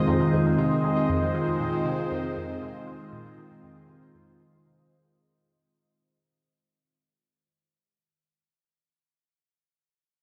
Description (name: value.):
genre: ambient, sequencer-driven space music.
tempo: 118 BPM.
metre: 4/4.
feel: straight.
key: F minor.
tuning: A4 = 440 Hz.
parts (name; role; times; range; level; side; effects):
phased analog pad; sustained chords; 0.0-5.2 s; Eb3 to C5; -28 LUFS; equal; phaser, chorus.
Celtic harp; arpeggios; 0.0-7.7 s; Eb4 to Ab4; -39 LUFS; equal; tape echo.
bubbling stepped-filter texture; texture; 0.0-5.2 s; Eb5; -37 LUFS; equal; chorus, built-in reverb.
resonant blip pluck; riff; 0.1-5.1 s; F2 to Ab3; -35 LUFS; equal; phaser, tape echo.
room: wet cathedral reverb, RT60 5.3 s.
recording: dreamy mix soaked in reverb.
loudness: -25 LUFS.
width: mono.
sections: 0.0-5.2 A section.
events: fade-out on synth arpeggio sound 0.0-5.2; fade-out on harp 0.0-5.2; fade-out 0.0-5.2.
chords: 0.0 Fm7.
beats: 0.07 0.58 | 1.09 1.60 2.11 2.62 | 3.12 3.63 4.14 4.65.